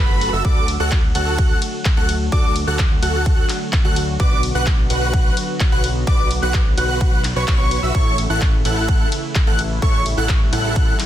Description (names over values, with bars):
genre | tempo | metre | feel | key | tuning
EDM, festival progressive house | 128 BPM | 4/4 | straight | D major | A4 = 440 Hz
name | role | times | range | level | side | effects
lush unison pad | sustained chords | 0.0-11.1 s | C#3 to F#4 | -28 LUFS | equal | chorus, sidechain pumping
wide unison lead | arpeggios | 0.0-11.0 s | B5 to F#6 | -24 LUFS | equal | wide subtle chorus, sidechain pumping, digital delay
dense compressed supersaw | riff | 0.0-11.0 s | E4 to F#5 | -25 LUFS | right 2 dB | sidechain pumping, digital delay
fat analog bass | bass | 0.0-10.9 s | F#1 to D2 | -23 LUFS | equal | sidechain pumping
big-room dance drum kit | drums | 0.2-11.1 s | handclaps, hi-hat, ride cymbal | -27 LUFS | left 1 dB | studio reverb
electronic kick drum | drums | 0.4-10.9 s | none | -17 LUFS | equal | studio reverb
room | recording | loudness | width
digital ambience | dense, heavily limited modern master | -15 LUFS | side -12 dB against mid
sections
0.0-11.1 A section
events
none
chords
0.4 D; 4.2 Bm; 7.9 A